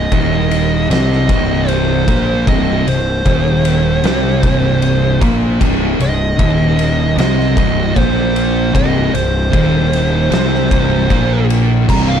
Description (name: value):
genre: stoner and doom metal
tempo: 76 BPM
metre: 4/4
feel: straight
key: C minor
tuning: A4 = 440 Hz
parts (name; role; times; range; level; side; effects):
- fuzz lead guitar; melody; 0.0-12.2 s; C5 to Bb5; -19 LUFS; right 2 dB; distortion, ping-pong delay
- thick fuzz guitar; riff; 0.0-12.2 s; C2 to C4; -19 LUFS; left 10 dB; distortion
- thick fuzz guitar; riff; 0.0-12.2 s; C2 to C4; -18 LUFS; right 10 dB; distortion
- fuzz fingered electric bass; bass; 0.0-12.2 s; C1 to C2; -18 LUFS; equal; overdrive
- oversized low-tuned drum kit; drums; 0.1-12.1 s; crash cymbal, kick drum, ride cymbal, snare drum; -18 LUFS; left 1 dB; none
room: light reverb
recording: dark, warm production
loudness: -11 LUFS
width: side -8 dB against mid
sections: 0.0-12.2 A section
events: lead electric guitar solo 0.0-12.2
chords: 0.0 Cm